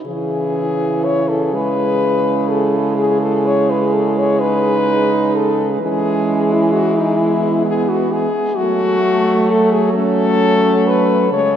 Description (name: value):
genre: classical, lyrical piece for horn quartet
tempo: 41-45 BPM (dotted quarters)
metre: 12/8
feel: rubato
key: C# minor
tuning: A4 = 443 Hz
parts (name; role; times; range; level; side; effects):
- warm French horn; second line; 0.0-11.6 s; A3 to E4; -22 LUFS; right 8 dB; none
- mellow French horn; melody; 0.1-11.6 s; D#4 to C#5; -17 LUFS; left 4 dB; none
- warm French horn; accompaniment; 0.1-11.6 s; E3 to A3; -20 LUFS; equal; none
- mellow French horn; bass; 0.1-11.6 s; C#3 to F#3; -20 LUFS; right 2 dB; none
room: wet cathedral reverb, RT60 6.1 s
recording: none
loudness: -13 LUFS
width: side -9 dB against mid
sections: 0.0-11.6 A section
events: none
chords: 0.0 C#m; 5.8 C#m/E; 8.6 F#m